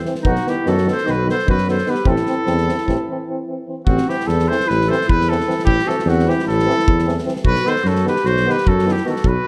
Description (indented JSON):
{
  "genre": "balkan folk, Balkan brass band",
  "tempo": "300 BPM (eighths)",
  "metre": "9/8",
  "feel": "straight",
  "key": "A dorian sharp4",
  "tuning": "A4 = 440 Hz",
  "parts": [
    { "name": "warm trumpet", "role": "melody", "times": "0.0-9.5 s", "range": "F#4 to C5", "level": "-24 LUFS", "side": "equal", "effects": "none" },
    { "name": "clear trombone", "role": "accompaniment", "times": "0.0-9.1 s", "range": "D#3 to E3", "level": "-31 LUFS", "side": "equal", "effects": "none" },
    { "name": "clear euphonium", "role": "accompaniment", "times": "0.1-9.1 s", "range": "B3 to C4", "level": "-28 LUFS", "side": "equal", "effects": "none" },
    { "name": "loose indie drum kit", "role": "percussion", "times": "0.1-9.3 s", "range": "kick drum, snare drum", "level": "-25 LUFS", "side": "equal", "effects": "none" },
    { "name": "clear clarinet", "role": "second line", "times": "0.2-9.5 s", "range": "C4 to A4", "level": "-26 LUFS", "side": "equal", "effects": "none" },
    { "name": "mellow tuba", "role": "bass", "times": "0.2-9.4 s", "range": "A1 to F#2", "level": "-22 LUFS", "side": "equal", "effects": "none" }
  ],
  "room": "moderate recital hall reverb, RT60 1.6 s",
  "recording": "dark, warm production",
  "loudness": "-18 LUFS",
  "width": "mono",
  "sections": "0.0-3.9 A section; 3.9-9.5 A section",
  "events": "break 3.0-3.9",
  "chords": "0.2 B; 2.1 Am; 7.4 B"
}